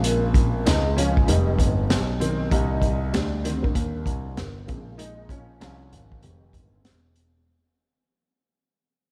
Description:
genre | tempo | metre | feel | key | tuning
hip hop, jazz-hop | 97 BPM | 4/4 | swing 60% on 16ths | unclear | A4 = 441 Hz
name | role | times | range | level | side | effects
dark upright piano | accompaniment | 0.0-7.1 s | Db3 to Eb4 | -30 LUFS | equal | ensemble chorus
dark concert grand piano | bass | 0.0-7.4 s | E1 to Eb2 | -27 LUFS | equal | none
crunchy breakbeat drum kit | drums | 0.0-7.3 s | hi-hat, kick drum, snare drum | -27 LUFS | equal | none
room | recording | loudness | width
light reverb | none | -23 LUFS | mono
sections
0.0-7.5 A section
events
fade-out 0.0-7.5; upright piano solo 0.0-7.5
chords
0.0 Bbm9; 1.3 Fm9; 2.5 Cm9; 4.7 Bbm9; 6.2 Fm9

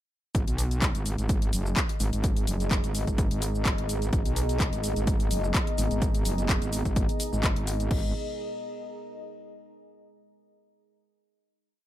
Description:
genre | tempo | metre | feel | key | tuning
bass house | 127 BPM | 4/4 | swing 54% on 16ths | G# minor | A4 = 440 Hz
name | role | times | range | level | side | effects
metallic wobble bass | bass | 0.3-8.1 s | F#1 to B1 | -28 LUFS | equal | chorus, overdrive, sidechain pumping
electronic kick drum | drums | 0.3-8.0 s | none | -28 LUFS | equal | overdrive
house drum kit | drums | 0.3-8.0 s | crash cymbal, handclaps, hi-hat, shaker | -32 LUFS | left 1 dB | overdrive
deep dark ambient pad | texture | 1.2-9.8 s | G#4 to A#5 | -36 LUFS | equal | chorus, built-in reverb, sidechain pumping
dark analog pad | sustained chords | 4.7-8.1 s | B3 to D#5 | -37 LUFS | left 1 dB | chorus, sidechain pumping
room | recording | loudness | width
digital ambience | none | -25 LUFS | side -13 dB against mid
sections
0.3-7.9 drop; 7.9-9.8 final chord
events
drop 0.3-7.9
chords
0.3 G#m

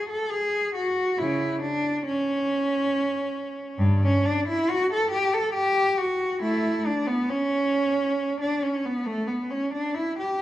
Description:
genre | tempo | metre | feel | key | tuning
classical, baroque-style suite movement for unaccompanied cello | 69 BPM | 3/4 | rubato | unclear | A4 = 440 Hz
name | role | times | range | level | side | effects
rich cello | solo | 0.0-10.4 s | G2 to A4 | -23 LUFS | equal | none
room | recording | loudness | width
moderate recital hall reverb, RT60 1.8 s | dark, warm production | -23 LUFS | side -14 dB against mid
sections
0.0-10.4 A section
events
none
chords
none

